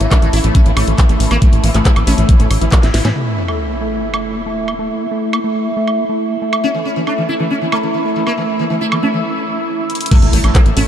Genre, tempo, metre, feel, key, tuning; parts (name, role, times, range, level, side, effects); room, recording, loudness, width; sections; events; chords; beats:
psychedelic trance; 138 BPM; 4/4; straight; A4 = 440 Hz
sitar; melody; 0.0-3.1, 6.6-10.8 s; A2 to E4; -21 LUFS; equal; phaser, sidechain pumping, ping-pong delay
overtone-sweeping drone; sustained chords; 0.0-10.9 s; E4 to A4; -21 LUFS; equal; chorus, built-in reverb, phaser, sidechain pumping
liquid acid bass; riff; 0.0-10.9 s; G3 to E4; -21 LUFS; moving between left 3 dB and right 4 dB; phaser, auto-pan, sidechain pumping, ping-pong delay
tight sequencer bass; bass; 0.0-3.1, 10.2-10.8 s; A1 to A2; -14 LUFS; equal
drum and bass drum kit; drums; 0.0-10.9 s; crash cymbal, handclaps, hi-hat, snare drum, woodblock; -22 LUFS; right 1 dB
electronic kick drum; drums; 0.1-2.8, 10.1-10.6 s; -10 LUFS; equal
sub drop and impact; sound effects; 3.2-4.9, 10.1-10.9 s; -23 LUFS; equal
moderate huge ambient reverb, RT60 8.5 s; dreamy mix soaked in reverb; -12 LUFS; side -10 dB against mid
0.0-3.2 A section; 3.2-10.1 B section
drum fill 2.8-3.2, 9.9; impact 3.2-4.9, 10.1-10.9; filter sweep on acid bass 3.2-10.1; break 9.2-10.1
0.0 A5
0.11 0.55 0.98 | 1.42 1.85 2.29 2.72 | 3.16 3.59 4.03 4.46 | 4.90 5.33 5.77 6.20 | 6.64 7.07 7.51 7.94 | 8.38 8.81 9.24 9.68 | 10.11 10.55